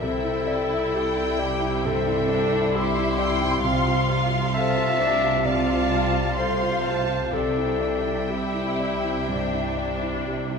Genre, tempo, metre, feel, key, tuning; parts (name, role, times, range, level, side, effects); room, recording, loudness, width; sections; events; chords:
cinematic, emotional film score for orchestra; 61-68 BPM; 4/4; rubato; A4 = 440 Hz
warm studio violin section; melody; 0.0-10.6 s; G5 to C6; -32 LUFS; left 2 dB
mellow clarinet; second line; 0.0-10.3 s; G4 to E5; -26 LUFS; left 2 dB
rich studio violin section; second line; 0.0-10.6 s; E5 to G5; -32 LUFS; left 2 dB
rich chamber viola section; accompaniment; 0.0-10.6 s; C4 to F4; -29 LUFS; left 2 dB
warm baby grand piano; accompaniment; 0.0-10.6 s; C2 to D5; -29 LUFS; equal
concert harp; arpeggios; 0.0-10.6 s; C3 to D5; -32 LUFS; left 6 dB
rich studio cello section; bass; 0.0-10.6 s; C3; -31 LUFS; right 4 dB
rich studio double bass section; bass; 0.0-10.6 s; C2; -30 LUFS; right 4 dB
wet scoring stage reverb, RT60 1.6 s; minimal, uncompressed stereo recording; -21 LUFS; side -5 dB against mid
0.0-10.6 A section
0.0 Cadd9; 3.6 F6/C; 7.3 Cadd9